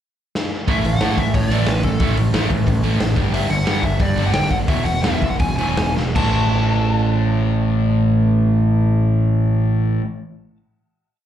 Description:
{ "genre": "punk rock", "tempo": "153-182 BPM", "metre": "4/4", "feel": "straight", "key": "unclear", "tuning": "A4 = 441 Hz", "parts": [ { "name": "raw garage drum kit", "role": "drums", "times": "0.4-6.2 s", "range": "crash cymbal, hi-hat, kick drum, snare drum", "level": "-22 LUFS", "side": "equal", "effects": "none" }, { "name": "biting lead guitar", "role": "melody", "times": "0.7-10.0 s", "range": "A4 to A5", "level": "-25 LUFS", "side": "left 2 dB", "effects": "overdrive, slapback echo, ping-pong delay" }, { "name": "overdriven semi-hollow guitar", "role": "riff", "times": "0.7-10.0 s", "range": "E2 to A3", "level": "-22 LUFS", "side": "right 10 dB", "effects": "none" }, { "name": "sludgy distorted guitar", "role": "riff", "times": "0.7-10.1 s", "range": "E2 to A3", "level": "-25 LUFS", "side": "left 9 dB", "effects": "overdrive, slapback echo" }, { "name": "growling picked electric bass", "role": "bass", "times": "0.7-10.0 s", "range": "E1 to A2", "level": "-19 LUFS", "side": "left 1 dB", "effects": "overdrive" } ], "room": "little or no reverb", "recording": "live gig heard through the venue's PA, club reverb", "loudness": "-16 LUFS", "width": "side -10 dB against mid", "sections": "0.0-0.7 pickup bar; 0.7-6.2 verse; 6.2-9.3 final chord", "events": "drum fill 0.3-0.7, 6.0; slowing down 3.3-6.2", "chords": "0.0 N.C.; 0.7 A5; 3.2 G5; 4.7 E; 6.2 A5" }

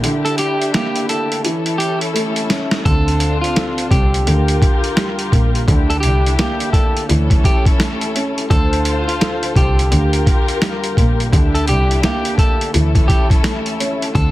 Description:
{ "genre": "hip hop, boom-bap hip-hop", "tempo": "85 BPM", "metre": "4/4", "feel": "swing 61% on 16ths", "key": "unclear", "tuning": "A4 = 440 Hz", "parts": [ { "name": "dark upright piano", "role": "accompaniment", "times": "0.0-14.3 s", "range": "D3 to A4", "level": "-23 LUFS", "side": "right 2 dB", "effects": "high-pass filter, low-pass filter" }, { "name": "dark studio string section", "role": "stabs", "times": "0.0-14.3 s", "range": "C4 to C5", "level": "-24 LUFS", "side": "left 4 dB", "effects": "high-pass filter, low-pass filter, ping-pong delay" }, { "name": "boom bap sampler-style drum kit", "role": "drums", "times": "0.0-14.3 s", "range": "hi-hat, kick drum, snare drum", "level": "-16 LUFS", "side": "equal", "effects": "none" }, { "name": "electric guitar at the edge of break-up", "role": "melody", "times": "0.2-14.3 s", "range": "F4 to A4", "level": "-22 LUFS", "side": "equal", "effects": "high-pass filter, low-pass filter, ping-pong delay" }, { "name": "warm double bass", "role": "bass", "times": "2.9-14.3 s", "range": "Bb1 to D2", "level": "-17 LUFS", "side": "equal", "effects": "none" } ], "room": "little or no reverb", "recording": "dense, heavily limited modern master, vinyl crackle", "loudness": "-13 LUFS", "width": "side -16 dB against mid", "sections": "0.0-14.1 A section", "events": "break 0.0-2.9; drum fill 2.1-2.9", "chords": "0.0 Gm69/D; 1.4 A; 2.9 Dm7; 4.3 Gm7/D; 5.7 C9; 7.1 A/D; 8.5 Dm7; 9.9 Gm7/D; 11.3 C9; 12.7 A/D" }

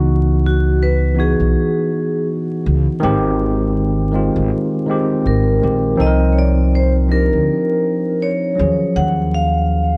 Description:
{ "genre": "hip hop", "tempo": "81 BPM", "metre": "4/4", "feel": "swing 58% on 16ths", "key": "unclear", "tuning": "A4 = 441 Hz", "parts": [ { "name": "tine electric piano", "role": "accompaniment", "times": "0.0-10.0 s", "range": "Eb3 to Bb4", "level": "-20 LUFS", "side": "equal", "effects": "cassette tape, low-pass filter" }, { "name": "upright bass", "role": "bass", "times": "0.0-10.0 s", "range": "Ab1 to Eb2", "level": "-19 LUFS", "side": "equal", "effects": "none" }, { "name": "vibraphone with medium hard mallets", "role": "melody", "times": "0.5-10.0 s", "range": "Gb4 to Gb5", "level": "-23 LUFS", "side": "equal", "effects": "low-pass filter" } ], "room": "light reverb, small room ambience", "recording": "dark, warm production, vinyl crackle, nothing above 11.0 kHz", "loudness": "-16 LUFS", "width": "mono", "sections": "0.0-10.0 A section", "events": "none", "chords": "0.0 Dbm11; 3.0 Abmaj7; 6.0 Cm11; 8.6 Ebm11" }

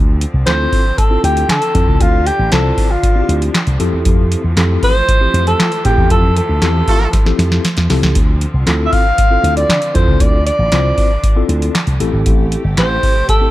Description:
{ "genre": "early-eighties boogie funk", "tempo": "117 BPM", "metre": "4/4", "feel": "straight", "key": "D minor", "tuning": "A4 = 440 Hz", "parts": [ { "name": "rich studio string section", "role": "sustained chords", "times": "0.0-13.5 s", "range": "C3 to G4", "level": "-27 LUFS", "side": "equal", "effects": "none" }, { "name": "slap bass with an envelope filter", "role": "bass", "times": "0.0-13.0 s", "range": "G1 to F3", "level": "-15 LUFS", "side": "equal", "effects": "none" }, { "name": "booming analog drum machine", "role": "drums", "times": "0.2-13.5 s", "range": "handclaps, hi-hat, kick drum, snare drum", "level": "-14 LUFS", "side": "equal", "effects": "gated reverb" }, { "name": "breathy alto saxophone", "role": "melody", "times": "0.5-13.5 s", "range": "F4 to F5", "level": "-16 LUFS", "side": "equal", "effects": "none" }, { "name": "mellow tine electric piano", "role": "accompaniment", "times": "0.5-13.5 s", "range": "C4 to C5", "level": "-21 LUFS", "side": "left 2 dB", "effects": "medium stereo tremolo" }, { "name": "dark horn section", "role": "second line", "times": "6.1-7.1 s", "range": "A3 to A4", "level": "-20 LUFS", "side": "right 3 dB", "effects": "none" } ], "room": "little or no reverb", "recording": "none", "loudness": "-11 LUFS", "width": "side -15 dB against mid", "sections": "0.0-13.5 A section", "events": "band accent 6.1-8.2; drum fill 7.1-8.2", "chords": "0.0 Dm7; 3.8 Fmaj7; 8.2 Dm7; 12.0 Am7" }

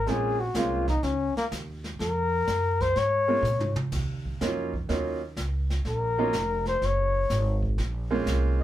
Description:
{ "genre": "jazz, small-group swing and bop", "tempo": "124 BPM", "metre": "4/4", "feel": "swing 68% on 8ths", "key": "Bb minor", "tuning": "A4 = 435 Hz", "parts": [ { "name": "breathy flugelhorn", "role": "melody", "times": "0.0-8.6 s", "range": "Bb3 to Db5", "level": "-26 LUFS", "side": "left 3 dB", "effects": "none" }, { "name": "upright bass", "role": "bass", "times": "0.0-8.6 s", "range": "F1 to Bb2", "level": "-29 LUFS", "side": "right 1 dB", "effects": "none" }, { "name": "clear grand piano", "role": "accompaniment", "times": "0.1-8.6 s", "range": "Gb3 to F4", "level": "-28 LUFS", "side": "right 4 dB", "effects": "none" }, { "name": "jazz brush drum kit", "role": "drums", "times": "0.1-8.6 s", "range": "brushed snare drum, crash cymbal, hi-hat, kick drum, snare drum, toms", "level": "-34 LUFS", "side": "right 1 dB", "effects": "none" } ], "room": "moderate studio ambience, RT60 0.5 s", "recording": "band playing live in one room", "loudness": "-24 LUFS", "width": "side -12 dB against mid", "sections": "0.0-8.6 A section", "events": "drum fill 3.4-3.9", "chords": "0.0 Bbm9; 3.9 Ebm9; 7.8 Bbm9" }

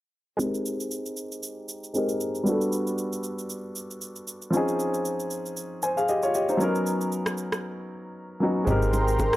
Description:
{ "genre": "amapiano", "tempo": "116 BPM", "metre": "4/4", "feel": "swing 55% on 16ths", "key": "unclear", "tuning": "A4 = 440 Hz", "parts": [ { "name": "warm grand piano", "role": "accompaniment", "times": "0.4-9.4 s", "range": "F3 to Ab5", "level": "-26 LUFS", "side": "equal", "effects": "low-pass filter" }, { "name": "booming analog drum machine", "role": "drums", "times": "0.4-9.4 s", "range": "kick drum, rim click, shaker", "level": "-33 LUFS", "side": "right 1 dB", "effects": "none" }, { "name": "warm analog pad", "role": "sustained chords", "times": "8.7-9.4 s", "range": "Bb4 to C6", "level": "-26 LUFS", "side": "right 1 dB", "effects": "chorus" }, { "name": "plucky analog bass", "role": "bass", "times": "8.7-9.4 s", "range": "Ab1", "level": "-25 LUFS", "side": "equal", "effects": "none" }, { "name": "congas and bongos", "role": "percussion", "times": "8.7-9.3 s", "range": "none", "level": "-32 LUFS", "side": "right 2 dB", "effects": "none" } ], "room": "little or no reverb", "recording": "dry, gritty hardware recording", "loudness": "-25 LUFS", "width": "side -16 dB against mid", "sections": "0.4-8.7 A section", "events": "filter sweep on grand piano 0.4-8.7; break 7.6-8.7", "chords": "0.4 Abmaj9; 2.5 Gmaj9; 4.5 Dbmaj9; 6.6 Bmaj9; 8.7 Abmaj9" }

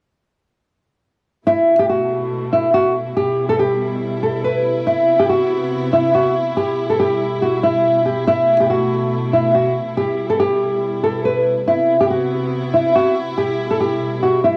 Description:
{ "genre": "hip hop", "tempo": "141 BPM", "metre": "4/4", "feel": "half-time", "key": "E minor", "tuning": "A4 = 445 Hz", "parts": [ { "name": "nylon-string guitar", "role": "melody", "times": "1.5-14.6 s", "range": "E4 to B4", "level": "-18 LUFS", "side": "equal", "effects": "tape echo" }, { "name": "dark studio string section", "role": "sustained chords", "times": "1.5-14.6 s", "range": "B2 to E4", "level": "-26 LUFS", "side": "equal", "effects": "none" } ], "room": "light reverb, studio reverb", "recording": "dry, gritty hardware recording, cassette tape", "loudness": "-17 LUFS", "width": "mono", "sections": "1.5-14.6 A section", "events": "none", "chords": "1.5 B7sus4; 3.2 Em; 4.9 Cmaj7; 6.6 Em; 8.3 B7sus4; 10.0 Em; 11.7 Cmaj7; 13.4 Em" }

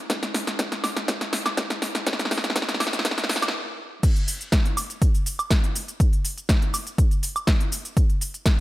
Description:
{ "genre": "house", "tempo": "122 BPM", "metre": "4/4", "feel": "straight", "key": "none", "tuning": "none", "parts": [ { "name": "big-room dance drum kit", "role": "drums", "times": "0.1-8.6 s", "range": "crash cymbal, hi-hat, shaker, snare drum, woodblock", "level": "-25 LUFS", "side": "equal", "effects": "none" }, { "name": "electronic kick drum", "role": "drums", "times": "0.1-8.6 s", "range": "none", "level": "-20 LUFS", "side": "equal", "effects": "overdrive, high-pass filter on kick" } ], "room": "light reverb", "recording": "high-pass filter", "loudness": "-21 LUFS", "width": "side -17 dB against mid", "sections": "0.0-4.0 A section; 4.0-8.6 B section", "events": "build-up 0.0-4.0; drum fill 0.0-3.5; stop 3.5-4.0; drop 4.0-8.6", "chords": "none" }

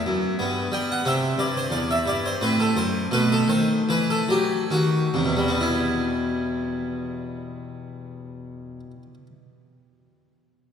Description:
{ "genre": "classical, baroque-style suite movement for harpsichord", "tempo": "66-93 BPM", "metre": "3/4", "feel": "rubato", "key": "E minor", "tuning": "A4 = 444 Hz", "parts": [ { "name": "harpsichord", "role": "solo", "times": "0.0-9.3 s", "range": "E2 to G5", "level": "-22 LUFS", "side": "equal", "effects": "none" } ], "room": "wet church reverb, RT60 3.6 s", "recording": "recorded in a church or concert hall", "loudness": "-21 LUFS", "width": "side -8 dB against mid", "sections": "0.0-5.6 A section; 5.6-10.7 B section", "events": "slowing down 0.1-5.6", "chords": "0.4 G; 1.0 C; 2.4 F#dim/A; 3.1 B7; 5.6 Em" }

